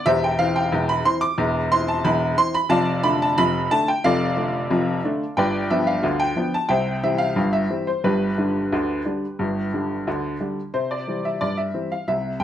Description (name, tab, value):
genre	ragtime piano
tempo	90 BPM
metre	2/4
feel	straight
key	C major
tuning	A4 = 440 Hz
part	clear upright piano	solo	0.0-12.4 s	E1 to D6	-19 LUFS	equal	none
room	light reverb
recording	none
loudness	-19 LUFS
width	side -10 dB against mid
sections	0.0-10.7 A section; 10.7-12.4 B section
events	none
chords	0.1 C/E; 2.7 Dm/F; 5.4 G7; 6.7 C; 8.0 G; 10.7 C